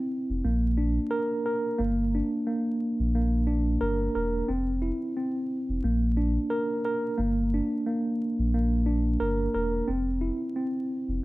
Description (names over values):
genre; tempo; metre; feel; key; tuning
hip hop, boom-bap hip-hop; 89 BPM; 4/4; swing 56% on 16ths; G dorian; A4 = 439 Hz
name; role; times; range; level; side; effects
mellow tine electric piano; accompaniment; 0.0-11.2 s; Bb3 to Bb4; -27 LUFS; right 1 dB; medium stereo tremolo, high-pass filter, low-pass filter
warm sub bass; bass; 0.3-11.2 s; E1 to Bb1; -27 LUFS; equal; none
room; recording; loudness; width
little or no reverb; vinyl crackle; -25 LUFS; side -19 dB against mid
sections
0.0-11.2 A section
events
none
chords
0.4 Bb; 1.8 Gm; 4.5 F5; 5.8 Bb; 7.2 Gm; 9.9 F5